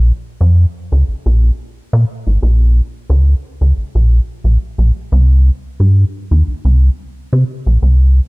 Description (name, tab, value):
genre	funk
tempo	89 BPM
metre	4/4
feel	straight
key	Bb dorian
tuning	A4 = 441 Hz
part	rubbery square bass	solo	0.0-8.2 s	Ab1 to C3	-10 LUFS	equal	none
room	little or no reverb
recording	none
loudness	-11 LUFS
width	side -27 dB against mid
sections	0.0-8.3 A section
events	none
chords	none